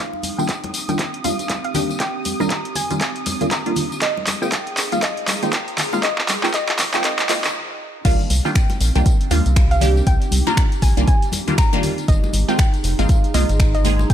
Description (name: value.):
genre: deep house.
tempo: 119 BPM.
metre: 4/4.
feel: swing 59% on 16ths.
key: C minor.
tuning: A4 = 436 Hz.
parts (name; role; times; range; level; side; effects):
soft round pluck; melody; 0.0-14.1 s; Eb5 to Bb5; -26 LUFS; equal; analog chorus, dub echo.
rubbery square bass; bass; 0.0-14.1 s; F1 to Eb2; -19 LUFS; equal; sidechain pumping, high-pass filter.
analog string pad; texture; 0.2-7.5 s; Eb6; -34 LUFS; right 3 dB; ensemble chorus, sidechain pumping.
warbly tape-like pad; texture; 0.0-14.1 s; C4 to C6; -30 LUFS; right 4 dB; chorus, built-in reverb, sidechain pumping.
congas; percussion; 0.1-14.1 s; none; -30 LUFS; left 3 dB; none.
punchy analog drum machine; drums; 0.2-14.1 s; crash cymbal, finger snaps, handclaps, hi-hat, tambourine; -23 LUFS; equal; none.
filtered dub chord stab; stabs; 0.4-14.1 s; Eb3 to Ab4; -25 LUFS; right 1 dB; phaser, sidechain pumping, dub echo.
electronic kick drum; drums; 0.5-14.1 s; none; -18 LUFS; equal; high-pass filter on kick, high-pass filter on room.
room: digital ambience.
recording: high-pass filter.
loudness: -16 LUFS.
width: side -10 dB against mid.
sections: 0.0-8.1 A section; 8.1-14.1 B section.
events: build-up 0.0-8.1; drum fill 0.0-7.5; filter sweep on synth stab 0.0-8.1; stop 7.5-8.1; drop 8.1-14.1.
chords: 0.0 Cm11; 4.0 Ab69; 8.1 Cm11; 12.1 Ab69.